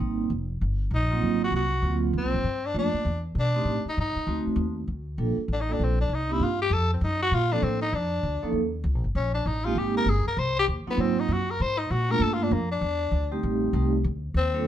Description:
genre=jazz, small-group swing and bop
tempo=197 BPM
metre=4/4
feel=swing 63% on 8ths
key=G minor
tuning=A4 = 440 Hz
part: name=vibraphone with medium mallets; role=accompaniment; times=0.0-14.6 s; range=F3 to A4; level=-28 LUFS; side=right 3 dB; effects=none
part: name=upright bass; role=bass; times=0.0-14.6 s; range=F1 to B2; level=-27 LUFS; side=equal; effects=none
part: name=growling tenor saxophone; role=melody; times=0.9-14.7 s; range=Bb3 to C5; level=-27 LUFS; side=left 2 dB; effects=plate reverb
room=light reverb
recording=dark, warm production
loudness=-24 LUFS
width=side -11 dB against mid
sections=0.0-4.9 A section; 4.9-14.6 A section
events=tenor saxophone solo 0.0-14.6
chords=0.0 Abmaj9; 1.2 Ab13; 2.4 Gm7; 3.1 E5; 3.7 Eb; 4.3 D7b9; 4.9 Gm7; 6.1 Cm9; 6.7 F7b9; 7.3 Bbmaj7; 8.5 Eb; 9.8 Abmaj9; 11.0 Ab13; 12.2 Gm7; 12.8 D9sus4; 13.4 Am7b5; 14.0 D5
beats=| 0.00 0.30 0.61 0.92 | 1.22 1.53 1.83 2.14 | 2.44 2.75 3.05 3.36 | 3.66 3.97 4.27 4.58 | 4.88 5.19 5.49 5.80 | 6.10 6.41 6.71 7.02 | 7.32 7.63 7.93 8.24 | 8.54 8.85 9.15 9.46 | 9.76 10.07 10.37 10.68 | 10.98 11.29 11.59 11.90 | 12.20 12.51 12.81 13.12 | 13.42 13.73 14.03 14.34 | 14.64

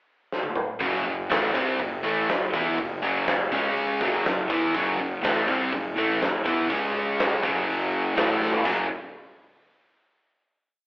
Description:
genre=hard rock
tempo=122 BPM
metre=4/4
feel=straight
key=unclear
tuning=A4 = 439 Hz
part: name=big rock drum kit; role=drums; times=0.3-8.8 s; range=crash cymbal, hi-hat, kick drum, snare drum, toms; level=-27 LUFS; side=equal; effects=none
part: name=high-gain distorted guitar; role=riff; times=0.8-8.8 s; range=F#2 to E4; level=-28 LUFS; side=equal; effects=distortion
part: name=overdriven electric guitar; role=riff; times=0.8-8.9 s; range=F#2 to E4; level=-29 LUFS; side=equal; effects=none
part: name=overdriven semi-hollow guitar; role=riff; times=0.8-8.9 s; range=F#2 to E4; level=-29 LUFS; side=equal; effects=none
part: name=fuzz fingered electric bass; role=bass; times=0.8-8.9 s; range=F#1 to E2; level=-33 LUFS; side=equal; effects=overdrive
room=moderate stone room reverb, RT60 1.1 s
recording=band playing live in one room, telephone sound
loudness=-22 LUFS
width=side -38 dB against mid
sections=0.0-0.8 pickup bar; 0.8-8.7 riff; 8.7-10.6 final chord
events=drum fill 0.3-0.8, 8.4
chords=0.0 N.C.; 0.8 F#5; 3.5 C#5; 4.0 F#5; 6.7 C#5; 7.4 F#5; 8.2 A5; 8.7 F#5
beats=0.31 | 0.81 1.30 1.80 2.29 | 2.78 3.27 3.76 4.25 | 4.74 5.23 5.72 6.21 | 6.70 7.19 7.67 8.16 | 8.65

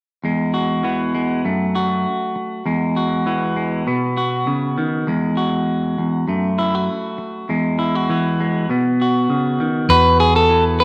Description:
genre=highlife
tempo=100 BPM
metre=4/4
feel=straight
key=E major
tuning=A4 = 444 Hz
part: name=clean electric guitar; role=accompaniment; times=0.2-10.8 s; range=E2 to F#4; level=-20 LUFS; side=equal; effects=spring reverb
part: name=electric guitar at the edge of break-up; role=arpeggios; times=9.9-10.8 s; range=G#4 to B4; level=-15 LUFS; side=equal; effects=tape echo
part: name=hollow-body short-scale fingered electric bass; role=bass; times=9.9-10.8 s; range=E2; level=-21 LUFS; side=equal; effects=none
room=wet echo chamber reverb, RT60 1.8 s, digital ambience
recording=none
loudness=-19 LUFS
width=mono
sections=0.2-9.9 A section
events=none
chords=0.2 Eadd9; 1.4 F#m; 2.7 Eadd9; 3.9 Badd9; 5.1 Eadd9; 6.3 F#m; 7.5 Eadd9; 8.7 Badd9; 9.9 Eadd9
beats=| 0.23 0.84 1.44 2.05 | 2.65 3.26 3.86 4.46 | 5.07 5.67 6.27 6.88 | 7.48 8.08 8.68 9.28 | 9.89 10.49

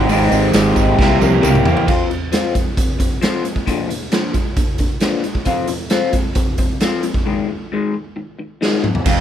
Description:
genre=indie rock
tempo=134 BPM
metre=4/4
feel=straight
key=F dorian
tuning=A4 = 440 Hz
part: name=crunchy overdriven guitar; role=riff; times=0.0-1.9, 9.1-9.2 s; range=F2 to Bb3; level=-19 LUFS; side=right 13 dB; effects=wide subtle chorus
part: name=electric guitar through a small old amp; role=riff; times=0.0-9.2 s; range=Ab2 to G4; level=-19 LUFS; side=left 4 dB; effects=phaser
part: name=fuzz fingered electric bass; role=bass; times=0.0-1.9, 9.1-9.2 s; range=F1 to E2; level=-18 LUFS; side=right 1 dB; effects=overdrive
part: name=raw garage drum kit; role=drums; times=0.1-9.2 s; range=crash cymbal, hi-hat, kick drum, snare drum, toms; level=-18 LUFS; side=right 1 dB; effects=none
part: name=tambourine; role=percussion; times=0.1-1.7, 9.1-9.2 s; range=none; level=-33 LUFS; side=right 24 dB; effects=none
room=little or no reverb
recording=none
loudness=-15 LUFS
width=side -10 dB against mid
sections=0.0-1.9 A section; 1.9-9.1 B section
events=drum fill 1.0-1.9, 8.6-9.1; break 7.3-9.1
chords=0.0 Abmaj7; 1.0 C7; 1.9 F5; 3.7 Bb; 5.5 F5; 7.3 Ab5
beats=| 0.09 0.54 0.98 1.43 | 1.88 2.33 2.78 3.23 | 3.67 4.12 4.57 5.02 | 5.47 5.92 6.37 6.82 | 7.27 7.72 8.16 8.61 | 9.06

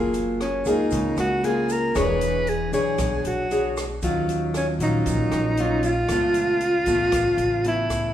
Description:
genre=bossa nova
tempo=116 BPM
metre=4/4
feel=straight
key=Eb minor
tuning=A4 = 440 Hz
part: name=nylon-string guitar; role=accompaniment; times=0.0-8.1 s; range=Bb2 to C#5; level=-24 LUFS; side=left 1 dB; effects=none
part: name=upright bass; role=bass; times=0.0-8.1 s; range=E1 to Eb2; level=-29 LUFS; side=equal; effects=none
part: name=open jazz drum kit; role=drums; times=0.1-8.0 s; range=hi-hat, kick drum, rim click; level=-33 LUFS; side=equal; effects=none
part: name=egg shaker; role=percussion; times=0.1-8.1 s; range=none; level=-42 LUFS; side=right 6 dB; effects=none
part: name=breathy alto saxophone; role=melody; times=0.4-8.1 s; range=Db4 to B4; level=-23 LUFS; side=right 1 dB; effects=none
room=wet recital hall reverb, RT60 1.8 s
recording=recorded in a church or concert hall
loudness=-20 LUFS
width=side -11 dB against mid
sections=0.0-8.1 A section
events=none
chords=0.0 Gbmaj9; 2.0 E13; 4.0 Ebm9; 6.1 Db7alt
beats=0.40 0.92 1.44 | 1.95 2.47 2.99 3.50 | 4.02 4.54 5.06 5.57 | 6.09 6.61 7.13 7.64

